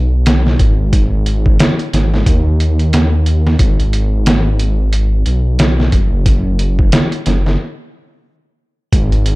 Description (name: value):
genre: trip hop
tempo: 90 BPM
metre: 4/4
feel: swing 59% on 16ths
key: G# minor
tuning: A4 = 441 Hz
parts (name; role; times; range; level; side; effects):
- dark detuned saw bass; bass; 0.0-9.4 s; F#1 to D#2; -13 LUFS; equal; none
- trip hop sampler-style drum kit; drums; 0.3-9.4 s; hi-hat, kick drum, snare drum; -14 LUFS; equal; overdrive
room: digital ambience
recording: dark, warm production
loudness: -11 LUFS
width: side -21 dB against mid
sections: 0.0-8.9 A section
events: stop 7.6-8.9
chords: none